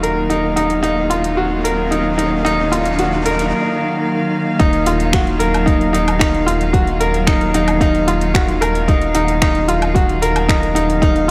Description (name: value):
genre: piano and strings electronica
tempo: 112 BPM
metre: 4/4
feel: straight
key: Eb minor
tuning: A4 = 436 Hz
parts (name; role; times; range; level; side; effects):
- dark studio string section; sustained chords; 0.0-11.3 s; Eb3 to F5; -23 LUFS; equal; none
- bright upright piano; riff; 0.0-11.3 s; Eb4 to Bb4; -19 LUFS; equal; tape echo
- round analog bass; bass; 0.0-11.3 s; Eb1; -24 LUFS; equal; sidechain pumping
- deep house drum kit; drums; 0.0-11.3 s; finger snaps, hi-hat, woodblock; -26 LUFS; equal; overdrive
- riser; sound effects; 0.1-3.5 s; none; -31 LUFS; equal; none
- electronic kick drum; drums; 4.6-11.1 s; none; -18 LUFS; equal; overdrive
room: moderate echo chamber reverb, RT60 2.0 s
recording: dark, warm production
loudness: -16 LUFS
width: mono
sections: 0.0-4.6 A section; 4.6-11.3 B section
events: build-up 0.0-4.6; break 3.5-4.6; drop 4.6-11.3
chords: 0.0 Ebmadd9